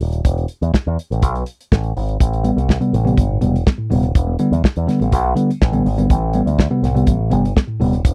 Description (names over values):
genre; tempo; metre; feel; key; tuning
disco; 123 BPM; 4/4; straight; A minor; A4 = 440 Hz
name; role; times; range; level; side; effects
picked electric bass with an envelope filter; bass; 0.0-8.1 s; D#1 to E2; -21 LUFS; equal; none
damped 70s drum kit; drums; 0.0-8.1 s; hi-hat, kick drum, snare drum; -16 LUFS; equal; none
tine electric piano; accompaniment; 2.2-7.9 s; A2 to B3; -20 LUFS; equal; overdrive
room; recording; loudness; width
little or no reverb; dry, close 1970s-style studio recording; -17 LUFS; mono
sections
0.0-8.1 A section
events
none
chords
0.2 E5; 2.2 Am7; 4.2 Em7; 6.1 Am7